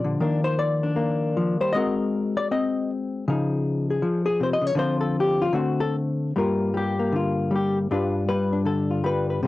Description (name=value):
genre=solo jazz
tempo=157 BPM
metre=4/4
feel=swing 64% on 8ths, rubato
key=G minor from 6.4 s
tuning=A4 = 440 Hz
part: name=hollow-body jazz guitar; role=solo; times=0.0-9.5 s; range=G2 to Eb5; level=-21 LUFS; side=left 2 dB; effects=cassette tape
room=moderate booth ambience, RT60 0.2 s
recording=home recording on cassette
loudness=-21 LUFS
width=side -16 dB against mid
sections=0.0-6.4 A section; 6.4-9.5 A section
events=hollow-body jazz guitar solo 0.0-6.4, 6.4-9.5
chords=0.2 Ebmaj7sus2; 1.8 Ab9; 3.3 Dbmaj9; 4.8 Dm7; 5.6 D5; 6.4 Gm7; 7.9 G7